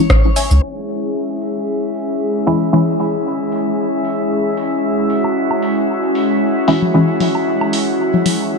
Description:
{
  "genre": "dub techno",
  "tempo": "114 BPM",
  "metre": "4/4",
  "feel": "swing 55% on 16ths",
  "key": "C# minor",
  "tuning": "A4 = 440 Hz",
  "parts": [
    { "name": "filtered dub chord stab", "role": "stabs", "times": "0.0-2.9, 6.7-7.1 s", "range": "E3 to E4", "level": "-18 LUFS", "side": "left 1 dB", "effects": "chorus, phaser, sidechain pumping, dub echo" },
    { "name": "drifting glass-harmonics texture", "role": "texture", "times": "0.0-8.6 s", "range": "C#5 to E5", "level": "-26 LUFS", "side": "equal", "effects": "chorus, built-in reverb, sidechain pumping" },
    { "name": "booming analog drum machine", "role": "drums", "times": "0.1-8.4 s", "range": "hi-hat, rim click, shaker", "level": "-22 LUFS", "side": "equal", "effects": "none" },
    { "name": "filtered dub chord stab", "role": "riff", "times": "0.4-0.5 s", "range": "C#5 to G#5", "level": "-28 LUFS", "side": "left 2 dB", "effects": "phaser, sidechain pumping, dub echo" },
    { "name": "soft dub sub bass", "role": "bass", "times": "0.5-0.6 s", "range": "C#2", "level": "-10 LUFS", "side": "equal", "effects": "tube saturation, sidechain pumping" },
    { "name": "airy breathy pad", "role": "sustained chords", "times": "0.6-8.6 s", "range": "G#3 to G#4", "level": "-17 LUFS", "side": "equal", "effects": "chorus, sidechain pumping" },
    { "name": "woodblock and congas", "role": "percussion", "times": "5.2-8.4 s", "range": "none", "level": "-22 LUFS", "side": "left 4 dB", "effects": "sidechain pumping on perc, dub echo" }
  ],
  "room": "light reverb, digital ambience",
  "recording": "dark, warm production, low-pass filter",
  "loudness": "-14 LUFS",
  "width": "side -4 dB against mid",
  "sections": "0.6-8.6 A section",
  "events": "filter sweep 0.6-8.6",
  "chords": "0.0 C#m",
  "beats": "0.10 | 0.62 1.15 1.68 2.20 | 2.73 3.26 3.78 4.31 | 4.84 5.36 5.89 6.42 | 6.94 7.47 7.99 8.52"
}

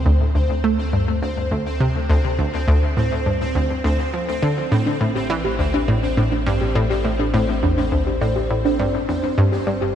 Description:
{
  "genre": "ambient, sequencer-driven space music",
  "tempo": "103 BPM",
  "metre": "4/4",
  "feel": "straight",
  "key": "unclear",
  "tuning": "A4 = 440 Hz",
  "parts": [
    { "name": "round analog bass", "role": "bass", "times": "0.0-9.9 s", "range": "G1 to D2", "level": "-25 LUFS", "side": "equal", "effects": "none" },
    { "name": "pulsing gated texture", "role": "texture", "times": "0.0-9.9 s", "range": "C4 to C5", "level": "-26 LUFS", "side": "equal", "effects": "chorus, built-in reverb" },
    { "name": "analog pluck", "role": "riff", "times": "0.1-9.8 s", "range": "D2 to A3", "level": "-20 LUFS", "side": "equal", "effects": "chorus, cassette tape, ping-pong delay" },
    { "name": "soft round pluck", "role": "arpeggios", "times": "4.7-9.9 s", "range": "D4 to D5", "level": "-24 LUFS", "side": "right 1 dB", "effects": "chorus, auto-pan, ping-pong delay" }
  ],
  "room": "moderate lush hall reverb, RT60 2.9 s",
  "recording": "dreamy mix soaked in reverb, cassette tape",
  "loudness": "-18 LUFS",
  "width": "side -10 dB against mid",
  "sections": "0.0-9.9 A section",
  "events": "none",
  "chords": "0.0 D7(no3); 4.7 Am7; 9.4 G5",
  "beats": "| 0.06 0.64 1.22 1.80 | 2.39 2.97 3.55 4.13 | 4.72 5.30 5.88 6.46 | 7.05 7.63 8.21 8.79 | 9.38"
}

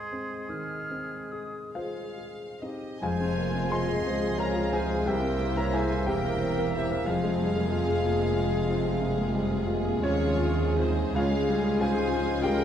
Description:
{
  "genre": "classical, romantic movement for piano and orchestra",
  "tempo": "45-65 BPM (dotted quarters)",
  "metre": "12/8",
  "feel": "rubato",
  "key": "Ab major, F minor from 3.0 s",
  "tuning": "A4 = 442 Hz",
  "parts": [
    { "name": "clear concert grand piano", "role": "melody", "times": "0.0-12.6 s", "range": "C2 to C6", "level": "-29 LUFS", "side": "left 2 dB", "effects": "none" },
    { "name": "clear oboe", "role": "second line", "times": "0.0-12.6 s", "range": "Ab4 to Ab5", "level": "-39 LUFS", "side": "right 1 dB", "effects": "none" },
    { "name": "concert flute", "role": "second line", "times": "0.0-12.6 s", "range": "Eb4 to F6", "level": "-37 LUFS", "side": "left 2 dB", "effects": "none" },
    { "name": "mellow bassoon", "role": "accompaniment", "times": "0.0-12.6 s", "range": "Ab3 to Bb3", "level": "-38 LUFS", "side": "right 1 dB", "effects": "none" },
    { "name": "bright symphonic violin section", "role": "second line", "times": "1.8-12.6 s", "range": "C5 to C6", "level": "-39 LUFS", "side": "equal", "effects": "none" },
    { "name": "warm symphonic violin section", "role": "melody", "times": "3.0-12.6 s", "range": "F4 to C5", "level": "-40 LUFS", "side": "left 4 dB", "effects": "none" },
    { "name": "dark symphonic viola section", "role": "accompaniment", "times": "3.0-12.6 s", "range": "F3 to F4", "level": "-36 LUFS", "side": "right 2 dB", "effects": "none" },
    { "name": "clear trombone section", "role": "sustained chords", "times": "3.0-12.6 s", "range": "Ab2 to Bb3", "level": "-37 LUFS", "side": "right 3 dB", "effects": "none" },
    { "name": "dark French horn section", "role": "sustained chords", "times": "3.0-12.6 s", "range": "C4 to F4", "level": "-37 LUFS", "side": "left 5 dB", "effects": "none" },
    { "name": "rich symphonic cello section", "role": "bass", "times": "3.0-12.6 s", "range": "C2 to F2", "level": "-34 LUFS", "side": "right 3 dB", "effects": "none" },
    { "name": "rich symphonic double bass section", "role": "bass", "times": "3.0-12.6 s", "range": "E1 to Eb2", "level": "-33 LUFS", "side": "right 4 dB", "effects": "none" }
  ],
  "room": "moderate recital hall reverb, RT60 1.4 s",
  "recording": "dark, warm production",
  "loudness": "-25 LUFS",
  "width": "side -9 dB against mid",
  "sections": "0.0-3.0 A section; 3.0-12.6 B section",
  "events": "none",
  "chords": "0.0 Ab; 3.0 Fm; 5.1 C7; 7.1 Fm; 11.2 Db",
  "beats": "0.51 1.75 | 3.03 4.06 5.08 6.08 | 7.08 8.05 9.03 10.03 | 11.15 12.11"
}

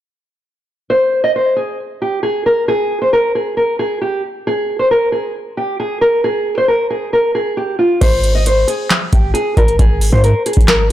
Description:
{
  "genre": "hip hop, trap",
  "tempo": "135 BPM",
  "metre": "4/4",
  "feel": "half-time",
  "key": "Ab major",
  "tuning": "A4 = 440 Hz",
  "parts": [
    { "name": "nylon-string guitar", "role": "melody", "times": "0.9-10.9 s", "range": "F4 to Eb5", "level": "-14 LUFS", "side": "equal", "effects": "low-pass filter, digital delay" },
    { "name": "clean 808-style bass", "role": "bass", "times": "8.0-10.9 s", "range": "Ab1 to Ab2", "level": "-14 LUFS", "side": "equal", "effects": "none" },
    { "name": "booming analog drum machine", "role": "drums", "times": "8.0-10.8 s", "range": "crash cymbal, handclaps, hi-hat, kick drum, snare drum", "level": "-14 LUFS", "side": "equal", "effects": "none" }
  ],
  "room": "light reverb, digital ambience",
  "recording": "blown-out, overdriven recording, overdrive",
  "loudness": "-12 LUFS",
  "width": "side -12 dB against mid",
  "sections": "0.9-8.0 A section; 8.0-10.9 B section",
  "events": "none",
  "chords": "0.9 N.C.; 8.0 Abadd9",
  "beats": "| 0.90 1.35 1.79 2.24 | 2.68 3.13 3.57 4.01 | 4.46 4.90 5.35 5.79 | 6.24 6.68 7.13 7.57 | 8.02 8.46 8.90 9.35 | 9.79 10.24 10.68"
}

